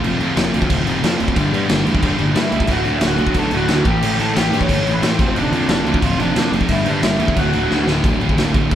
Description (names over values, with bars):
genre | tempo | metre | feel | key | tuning
punk rock | 180 BPM | 4/4 | straight | unclear | A4 = 441 Hz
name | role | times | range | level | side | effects
crunchy overdriven guitar | riff | 0.0-8.8 s | D2 to A3 | -23 LUFS | right 7 dB | none
sludgy distorted guitar | riff | 0.0-8.8 s | D2 to A3 | -22 LUFS | left 5 dB | overdrive
fuzz picked electric bass | bass | 0.0-8.8 s | D1 to A2 | -23 LUFS | equal | overdrive
raw garage drum kit | drums | 0.0-8.8 s | crash cymbal, kick drum, snare drum | -18 LUFS | equal | none
lead guitar through a small cranked amp | melody | 2.4-7.8 s | C4 to C#6 | -23 LUFS | equal | overdrive
room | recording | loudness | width
little or no reverb | band playing live in one room | -14 LUFS | side -10 dB against mid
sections
0.0-8.0 A section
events
drum fill 7.7-8.0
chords
0.0 F5; 1.4 G5; 2.7 D; 3.9 A; 5.2 F5; 6.7 G5; 7.4 D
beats
| 0.03 0.37 0.70 1.03 | 1.36 1.70 2.03 2.36 | 2.70 3.03 3.36 3.69 | 4.03 4.36 4.70 5.03 | 5.36 5.70 6.03 6.36 | 6.70 7.03 7.37 7.71 | 8.04 8.38 8.71